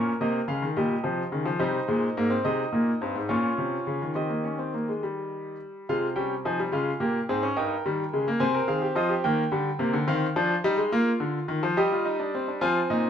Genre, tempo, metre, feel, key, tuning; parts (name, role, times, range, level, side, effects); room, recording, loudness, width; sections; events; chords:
classical, baroque-style 4-part fugue for grand piano; 71 BPM (dotted quarters); 6/8; straight; Ab major; A4 = 440 Hz
bright grand piano; solo; 0.0-13.1 s; G2 to Ab5; -24 LUFS; equal
wet stone room reverb, RT60 1.0 s; heard from further back in the room; -24 LUFS; side -8 dB against mid
0.0-5.9 A section; 5.9-12.6 B section
0.0 Bbm; 0.8 Eb7/Bb; 1.6 Ab; 3.3 Bbm; 4.2 Eb; 5.9 Ab/C; 6.7 Bbm7; 7.6 Eb7/G; 8.4 Ab/C; 9.2 Eb; 10.1 Fm7/Eb; 10.9 Bb; 11.8 Eb/G